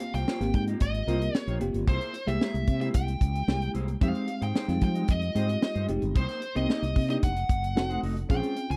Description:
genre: polished 1980s jazz-funk pop.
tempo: 112 BPM.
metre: 4/4.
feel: straight.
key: unclear.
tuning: A4 = 442 Hz.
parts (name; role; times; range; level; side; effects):
nasal lead guitar with a parked wah; melody; 0.0-8.8 s; C5 to Ab5; -37 LUFS; equal; overdrive.
bell-like FM electric piano; accompaniment; 0.0-8.8 s; G3 to Bb4; -35 LUFS; equal; tremolo, subtle chorus.
mellow electric guitar; riff; 0.0-8.8 s; Ab3 to Eb5; -40 LUFS; equal; lush chorus.
tight funk drum kit; drums; 0.0-8.8 s; hi-hat, kick drum, snare drum; -28 LUFS; equal; none.
mellow fretless electric bass; bass; 0.1-8.8 s; F1 to F3; -32 LUFS; equal; none.
room: small room reverb.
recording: dry, close 1970s-style studio recording.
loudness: -28 LUFS.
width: mono.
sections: 0.0-8.8 A section.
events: none.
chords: 0.0 Abmaj13; 1.9 C7b13; 4.0 Fm9; 6.2 Cm7; 7.2 F7b9.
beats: 0.27 0.81 1.34 | 1.88 2.41 2.94 3.48 | 4.01 4.55 5.08 5.62 | 6.16 6.69 7.23 7.76 | 8.30.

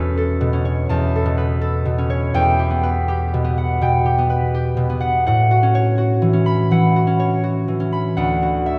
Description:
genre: classical, solo harp piece.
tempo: 82 BPM.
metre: 4/4.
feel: rubato.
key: E dorian.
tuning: A4 = 442 Hz.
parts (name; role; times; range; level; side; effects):
concert harp; solo; 0.0-8.8 s; D2 to B5; -18 LUFS; equal; none.
room: wet concert hall reverb, RT60 2.0 s.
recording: none.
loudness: -18 LUFS.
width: mono.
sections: 0.0-8.8 A section.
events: none.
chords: 0.0 Bsus2/E; 2.4 Emadd9; 5.3 A69; 8.2 Dadd9.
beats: 0.15 0.90 1.63 | 2.36 3.10 3.82 4.53 | 5.26 5.97 6.71 7.45 | 8.18.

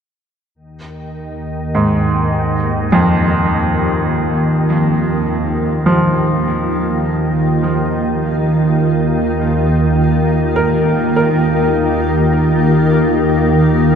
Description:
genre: dark ambient drone.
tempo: 51 BPM.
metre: 4/4.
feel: straight.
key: unclear.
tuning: A4 = 440 Hz.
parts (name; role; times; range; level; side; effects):
organ-like drone; drone; 0.9-14.0 s; Eb2 to Eb3; -14 LUFS; equal; ensemble chorus, built-in reverb.
granular cloud pad; sustained chords; 1.3-14.0 s; Eb3 to F4; -22 LUFS; equal; built-in reverb.
clear baby grand piano; arpeggios; 1.7-14.0 s; F2 to Bb4; -18 LUFS; right 1 dB; tape echo.
room: wet cathedral reverb, RT60 5.4 s.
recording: none.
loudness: -12 LUFS.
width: side -7 dB against mid.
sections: 0.6-14.0 A section.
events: fade-in on ambient pad 0.6-14.0.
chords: 0.6 Ebsus2.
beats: | 0.57 1.75 2.92 4.10 | 5.28 6.45 7.63 8.81 | 9.98 11.16 12.34 13.51.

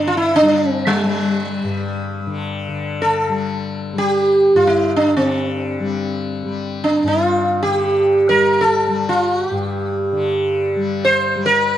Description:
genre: indian classical, Hindustani.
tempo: free time.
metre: none.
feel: none.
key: G raga bhimpalasi.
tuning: A4 = 442 Hz.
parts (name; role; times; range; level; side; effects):
sitar; melody; 0.0-11.8 s; G3 to C5; -16 LUFS; right 1 dB; tape echo.
tanpura; drone; 0.0-11.8 s; G2 to G3; -24 LUFS; left 5 dB; none.
room: light reverb.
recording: dry, close 1970s-style studio recording.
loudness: -15 LUFS.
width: side -11 dB against mid.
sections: 0.0-2.7 A section; 2.7-11.8 A section.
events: none.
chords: none.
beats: free time.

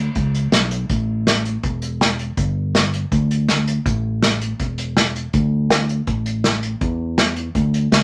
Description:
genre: honky-tonk and classic country.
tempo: 162 BPM.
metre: 4/4.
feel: straight.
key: unclear.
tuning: A4 = 440 Hz.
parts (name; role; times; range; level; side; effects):
fingered electric bass; bass; 0.0-8.0 s; E1 to E2; -23 LUFS; equal; none.
unplugged drum kit; drums; 0.2-8.0 s; hi-hat, kick drum, snare drum; -21 LUFS; equal; none.
room: wet studio ambience, RT60 0.5 s.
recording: none.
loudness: -20 LUFS.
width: mono.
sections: 0.0-8.0 A section.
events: none.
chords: none.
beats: 0.16 0.53 | 0.90 1.27 1.64 2.01 | 2.38 2.75 3.12 3.48 | 3.85 4.22 4.59 4.96 | 5.33 5.70 6.07 6.44 | 6.81 7.18 7.55 7.92.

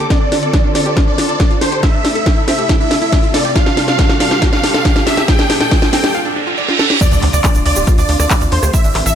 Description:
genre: uplifting trance.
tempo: 139 BPM.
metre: 4/4.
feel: straight.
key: D minor.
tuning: A4 = 441 Hz.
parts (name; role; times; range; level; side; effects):
supersaw chords; melody; 0.0-9.2 s; C5 to G5; -19 LUFS; right 1 dB; phaser, sidechain pumping, low-pass filter, digital delay.
dark studio string section; sustained chords; 0.0-9.2 s; Bb2 to A4; -23 LUFS; left 3 dB; sidechain pumping.
analog pluck; arpeggios; 0.0-9.1 s; C4 to D5; -23 LUFS; right 3 dB; chorus, sidechain pumping, digital delay.
techno drum kit; drums; 0.0-9.1 s; crash cymbal, handclaps, hi-hat, rim click, snare drum; -17 LUFS; equal; none.
riser, reverse cymbal and impact; sound effects; 0.0-8.7 s; none; -21 LUFS; right 2 dB; none.
electronic kick drum; drums; 0.1-8.8 s; none; -14 LUFS; equal; none.
analog pluck; second line; 7.0-9.2 s; C5 to E5; -24 LUFS; right 6 dB; chorus, cassette tape, sidechain pumping, digital delay.
tube shaker; percussion; 7.0-9.1 s; none; -24 LUFS; right 6 dB; none.
tight sequencer bass; bass; 7.1-9.1 s; D1 to E2; -16 LUFS; equal; sidechain pumping.
room: light reverb, digital ambience.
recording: none.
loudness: -11 LUFS.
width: side -9 dB against mid.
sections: 0.0-7.0 A section; 7.0-9.2 B section.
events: build-up 0.0-7.0; drum fill 0.0-6.1, 6.7-7.0; riser 0.0-6.1; filter sweep on supersaw synth 0.0-7.0; break 6.1-7.0; reverse cymbal 6.1-7.0; drop 7.0-9.2; impact 7.0-8.7.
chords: 0.1 Dm7; 1.8 Am; 3.6 Fadd9; 5.3 Gmadd9; 7.0 Dm7.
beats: | 0.10 0.54 0.97 1.40 | 1.83 2.26 2.69 3.12 | 3.56 3.99 4.42 4.85 | 5.28 5.71 6.15 6.58 | 7.01 7.44 7.87 8.30 | 8.74.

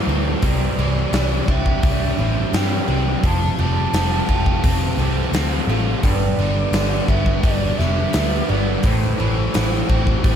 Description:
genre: rock, shoegaze and dream pop.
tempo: 86 BPM.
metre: 4/4.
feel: straight.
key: unclear.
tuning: A4 = 440 Hz.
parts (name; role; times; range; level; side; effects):
mellow hollow concert flute; melody; 0.0-10.3 s; C5 to A5; -28 LUFS; right 1 dB; slapback echo.
picked twelve-string acoustic guitar; arpeggios; 0.0-10.4 s; E3 to G4; -31 LUFS; right 10 dB; wide subtle chorus, slapback echo.
biting overdriven guitar; riff; 0.0-10.4 s; G2 to G4; -27 LUFS; left 13 dB; analog chorus.
biting overdriven guitar; riff; 0.0-10.4 s; G2 to F4; -26 LUFS; right 11 dB; reverse reverb.
distorted electric guitar; riff; 0.0-10.4 s; F2 to C4; -27 LUFS; left 2 dB; distortion.
vintage muted picked electric bass; bass; 0.1-10.4 s; F1 to G2; -21 LUFS; equal; none.
huge arena drum kit; drums; 0.4-10.4 s; hi-hat, kick drum, snare drum; -21 LUFS; equal; none.
room: studio ambience.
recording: none.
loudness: -16 LUFS.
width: side -8 dB against mid.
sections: 0.0-10.4 A section.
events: none.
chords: 0.0 Am7; 3.2 Fadd9; 6.0 G; 8.8 Am7.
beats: | 0.44 1.14 1.84 2.54 | 3.24 3.94 4.64 5.34 | 6.04 6.74 7.45 8.15 | 8.85 9.55 10.25.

